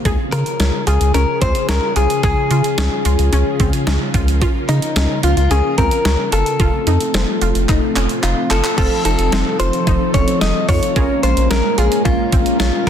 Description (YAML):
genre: synth-pop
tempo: 110 BPM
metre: 4/4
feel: straight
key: Bb minor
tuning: A4 = 440 Hz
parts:
  - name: string machine, cellos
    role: sustained chords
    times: 0.0-12.9 s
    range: Db3 to Bb4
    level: -21 LUFS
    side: equal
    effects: ensemble chorus
  - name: analog pluck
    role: arpeggios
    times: 0.0-12.9 s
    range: C4 to Ab4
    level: -26 LUFS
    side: right 1 dB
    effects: chorus, ping-pong delay
  - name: round analog bass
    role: bass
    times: 0.1-12.9 s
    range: F1 to Db3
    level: -17 LUFS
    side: equal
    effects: none
  - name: detuned 8-bit digital drum machine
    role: drums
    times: 0.1-12.9 s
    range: crash cymbal, handclaps, hi-hat, kick drum, snare drum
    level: -20 LUFS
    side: equal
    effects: none
  - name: direct-recorded clean electric guitar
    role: melody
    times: 0.3-12.9 s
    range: Eb4 to Eb5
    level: -20 LUFS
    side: left 3 dB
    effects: none
  - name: funky polysynth comp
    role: accompaniment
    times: 8.8-12.9 s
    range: C4 to Bb4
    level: -24 LUFS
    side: right 2 dB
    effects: chorus
room: light reverb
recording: dense, heavily limited modern master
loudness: -14 LUFS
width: side -9 dB against mid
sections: 0.0-8.8 A section; 8.8-12.9 B section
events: drum fill 7.7-8.8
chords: 0.1 Db; 4.1 Bbm/Db; 6.6 F; 8.8 F7; 11.0 Bbm7